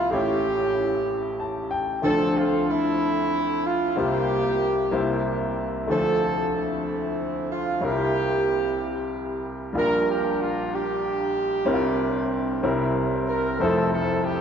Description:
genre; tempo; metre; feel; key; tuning
gospel; 62 BPM (dotted quarters); 6/8; straight; unclear; A4 = 439 Hz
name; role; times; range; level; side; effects
warm horn section; melody; 0.0-14.4 s; A3 to Bb4; -24 LUFS; right 2 dB; none
clear baby grand piano; accompaniment; 0.0-14.4 s; F1 to A5; -25 LUFS; left 1 dB; none
room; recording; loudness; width
wet cathedral reverb, RT60 4.3 s; recorded in a church or concert hall, nothing above 7.6 kHz; -22 LUFS; side -7 dB against mid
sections
0.0-13.6 A section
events
grand piano fill 1.1-2.0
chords
0.1 A7; 2.0 Dm7; 4.0 C7sus4; 4.9 C7; 5.9 Dm7; 7.8 C7; 9.7 Gm7/Bb; 11.7 C7sus4; 12.6 C7; 13.6 Fmaj7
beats
| 0.12 1.08 | 2.04 3.00 | 3.97 4.93 | 5.89 6.85 | 7.82 8.78 | 9.74 10.70 | 11.67 12.63 | 13.59

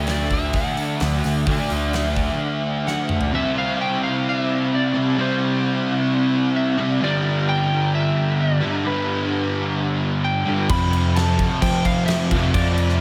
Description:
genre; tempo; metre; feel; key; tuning
rock, shoegaze and dream pop; 130 BPM; 4/4; straight; C major; A4 = 439 Hz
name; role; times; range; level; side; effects
clean electric guitar; melody; 0.0-13.0 s; B4 to B5; -29 LUFS; equal; analog chorus, tape echo
fuzz guitar; riff; 0.0-13.0 s; F2 to D4; -23 LUFS; equal; distortion, ensemble chorus
growling picked electric bass; bass; 0.0-2.3, 10.7-13.0 s; D2 to F3; -24 LUFS; equal; overdrive
gated 80s drum kit; drums; 0.1-3.3, 10.7-12.9 s; crash cymbal, hi-hat, kick drum, snare drum, toms; -27 LUFS; equal; none
room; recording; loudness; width
moderate huge ambient reverb, RT60 4.9 s; dreamy mix soaked in reverb; -21 LUFS; mono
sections
0.0-3.3 A section; 3.3-13.0 B section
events
drum fill 2.9-3.3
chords
0.0 D; 3.3 C; 7.0 G; 10.7 F5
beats
0.07 0.54 1.01 | 1.47 1.94 2.40 2.87 | 3.33 3.79 4.25 4.72 | 5.18 5.64 6.10 6.56 | 7.02 7.48 7.94 8.40 | 8.86 9.32 9.78 10.24 | 10.70 11.16 11.62 12.08 | 12.54 13.00

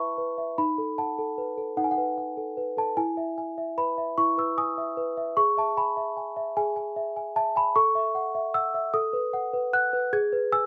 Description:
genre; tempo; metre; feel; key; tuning
classical, lullaby for celesta; 50 BPM (dotted quarters); 6/8; straight; E major; A4 = 441 Hz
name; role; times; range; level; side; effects
celesta; solo; 0.0-10.7 s; D#4 to G#6; -27 LUFS; equal; none
room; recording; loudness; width
little or no reverb; recorded outdoors, with no room sound; -27 LUFS; mono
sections
0.0-10.7 A section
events
none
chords
0.0 E; 0.6 B7/D#; 3.0 E; 5.4 E/G#; 7.8 F#m7/A; 8.9 B7/A; 10.1 E/G#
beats
| 0.57 1.78 | 2.98 4.17 | 5.37 6.57 | 7.76 8.95 | 10.14

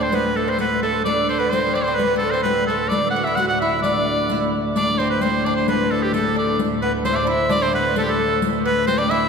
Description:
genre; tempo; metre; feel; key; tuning
medieval dance; 130 BPM; 2/4; straight; D mixolydian; A4 = 440 Hz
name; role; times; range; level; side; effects
bright shawm; melody; 0.0-9.3 s; G4 to F#5; -21 LUFS; right 1 dB; slapback echo
breathy mellow tenor recorder; second line; 0.0-9.3 s; G4 to F#5; -25 LUFS; left 3 dB; none
lute; second line; 0.0-9.3 s; A3 to F#4; -26 LUFS; right 4 dB; none
pipe organ, principal chorus; drone; 0.0-9.3 s; D2 to A2; -26 LUFS; left 1 dB; none
riq; percussion; 0.1-9.1 s; none; -26 LUFS; left 4 dB; none
room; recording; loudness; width
wet cathedral reverb, RT60 5.8 s; heard from further back in the room; -17 LUFS; side -6 dB against mid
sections
0.0-6.6 A section; 6.6-9.3 B section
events
none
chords
none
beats
| 0.12 0.59 | 1.05 1.52 | 1.98 2.44 | 2.91 3.37 | 3.83 4.29 | 4.76 5.22 | 5.68 6.13 | 6.59 7.05 | 7.51 7.97 | 8.42 8.88

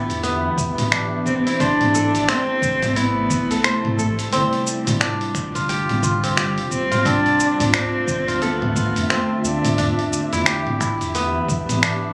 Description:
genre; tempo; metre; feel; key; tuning
organic downtempo; 88 BPM; 4/4; swing 60% on 16ths; D dorian; A4 = 442 Hz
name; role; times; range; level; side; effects
dark cello; melody; 0.0-10.1 s; G3 to D4; -25 LUFS; equal; tape echo
ethereal airy pad; sustained chords; 0.0-12.1 s; C3 to E5; -29 LUFS; equal; ensemble chorus, built-in reverb, sidechain pumping
kora; arpeggios; 0.0-12.1 s; B3 to C5; -26 LUFS; equal; digital delay
warm sub bass; bass; 0.1-11.4 s; E1 to F2; -30 LUFS; equal; sidechain pumping
dusty soul sampler-style drum kit; drums; 0.1-12.0 s; finger snaps, hi-hat, shaker, toms; -25 LUFS; equal; none
electronic kick drum; drums; 0.6-11.6 s; none; -30 LUFS; equal; none
room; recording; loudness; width
moderate concert hall reverb, RT60 2.3 s; recorded on a phone in the room, club reverb; -20 LUFS; mono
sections
0.0-12.1 A section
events
none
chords
0.0 Em7; 1.6 Am; 4.3 G7sus4; 7.1 Dm7; 9.8 Em7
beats
0.24 0.92 | 1.60 2.28 2.96 3.65 | 4.33 5.01 5.69 6.38 | 7.06 7.74 8.42 9.10 | 9.78 10.46 11.15 11.83

